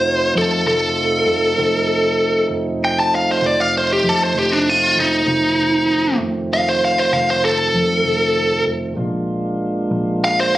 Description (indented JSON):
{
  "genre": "slow blues",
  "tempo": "65 BPM (dotted quarters)",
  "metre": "12/8",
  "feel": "straight",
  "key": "F mixolydian",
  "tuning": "A4 = 444 Hz",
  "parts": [
    { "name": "biting lead guitar", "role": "melody", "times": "0.0-10.6 s", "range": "D4 to A5", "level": "-15 LUFS", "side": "equal", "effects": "overdrive" },
    { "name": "tonewheel organ", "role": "sustained chords", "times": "0.0-10.6 s", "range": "Eb3 to F4", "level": "-22 LUFS", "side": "right 2 dB", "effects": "slow rotary speaker" },
    { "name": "vintage muted fingered electric bass", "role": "bass", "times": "0.0-10.6 s", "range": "F1 to F2", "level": "-27 LUFS", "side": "equal", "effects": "none" }
  ],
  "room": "moderate club ambience, RT60 0.5 s",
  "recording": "recorded on a phone in the room, studio reverb",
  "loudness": "-15 LUFS",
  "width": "side -15 dB against mid",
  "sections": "0.0-10.6 A section",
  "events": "lead electric guitar solo 0.0-10.6",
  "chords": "0.0 F7; 9.0 Bb7"
}